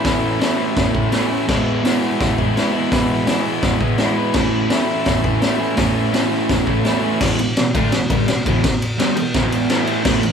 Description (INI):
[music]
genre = garage rock duo or trio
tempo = 168 BPM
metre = 4/4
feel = straight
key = E mixolydian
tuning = A4 = 440 Hz
[part]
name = crunchy overdriven guitar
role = riff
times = 0.0-10.3 s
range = E2 to E4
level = -18 LUFS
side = equal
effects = none
[part]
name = raw garage drum kit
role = drums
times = 0.0-10.3 s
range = crash cymbal, hi-hat, kick drum, ride cymbal, snare drum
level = -18 LUFS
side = equal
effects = none
[sound]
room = moderate studio ambience, RT60 0.5 s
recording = band playing live in one room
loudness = -15 LUFS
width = side -7 dB against mid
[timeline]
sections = 0.0-7.2 A section; 7.2-10.3 B section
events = none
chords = 0.0 A; 1.5 E; 4.3 A; 7.2 E5; 9.7 A5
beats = | 0.04 0.40 0.76 1.12 | 1.48 1.84 2.20 2.56 | 2.92 3.27 3.63 3.99 | 4.35 4.71 5.06 5.42 | 5.78 6.14 6.49 6.85 | 7.21 7.56 7.92 8.28 | 8.63 8.99 9.34 9.70 | 10.05